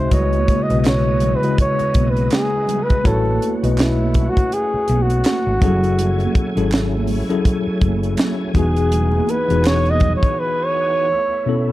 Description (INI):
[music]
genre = lush 1970s-style soul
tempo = 82 BPM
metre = 4/4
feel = swing 58% on 16ths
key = C# minor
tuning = A4 = 440 Hz
[part]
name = breathy flugelhorn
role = melody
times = 0.0-11.7 s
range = E4 to D#5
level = -20 LUFS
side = right 1 dB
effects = none
[part]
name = mellow tine electric piano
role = accompaniment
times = 0.0-11.7 s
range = B2 to E5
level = -22 LUFS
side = left 3 dB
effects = medium stereo tremolo
[part]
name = overdriven tonewheel organ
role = sustained chords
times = 0.0-11.7 s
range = C#3 to G#5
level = -30 LUFS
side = right 1 dB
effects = fast rotary speaker, chorus vibrato
[part]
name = hollow-body short-scale fingered electric bass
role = bass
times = 0.0-10.1 s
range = E1 to C#2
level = -19 LUFS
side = equal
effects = none
[part]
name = tight funk drum kit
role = drums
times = 0.1-10.4 s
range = hi-hat, kick drum, snare drum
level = -19 LUFS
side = equal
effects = none
[part]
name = congas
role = percussion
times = 0.1-10.2 s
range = none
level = -28 LUFS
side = right 5 dB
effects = none
[part]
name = group handclap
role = percussion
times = 0.8-9.8 s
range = none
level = -34 LUFS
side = right 4 dB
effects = none
[sound]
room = small room ambience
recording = dark, warm production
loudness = -15 LUFS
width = side -16 dB against mid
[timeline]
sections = 0.0-11.7 A section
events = flugelhorn solo 0.0-11.7; break 10.4-11.7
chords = 0.1 C#m11; 3.1 A69; 5.6 F#m9; 8.6 Emaj9; 11.1 B7sus4